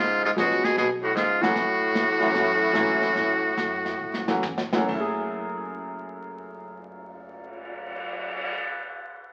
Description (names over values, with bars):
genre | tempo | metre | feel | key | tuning
jazz, small-group swing and bop | 130-153 BPM | 4/4 | swing 66% on 8ths | F# minor | A4 = 441 Hz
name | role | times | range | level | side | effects
trumpet with metal mute | melody | 0.0-4.4 s | E#4 to G#4 | -26 LUFS | equal | none
bright tenor saxophone | second line | 0.0-4.4 s | G#2 to B2 | -29 LUFS | equal | none
upright bass | bass | 0.0-8.6 s | F#1 to A2 | -46 LUFS | equal | none
clear baby grand piano | accompaniment | 0.4-8.7 s | F#2 to G#4 | -31 LUFS | equal | none
jazz brush drum kit | drums | 0.4-8.5 s | brushed snare drum, crash cymbal, cymbal swell, hi-hat, kick drum, snare drum, toms | -34 LUFS | equal | none
room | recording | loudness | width
moderate large studio reverb, RT60 0.9 s | very old 78 rpm record, vinyl crackle | -25 LUFS | mono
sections
0.0-4.9 A section; 4.9-8.6 B section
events
slowing down 1.6-4.9; drum fill 4.0-4.9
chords
0.0 C#7; 1.6 F#m7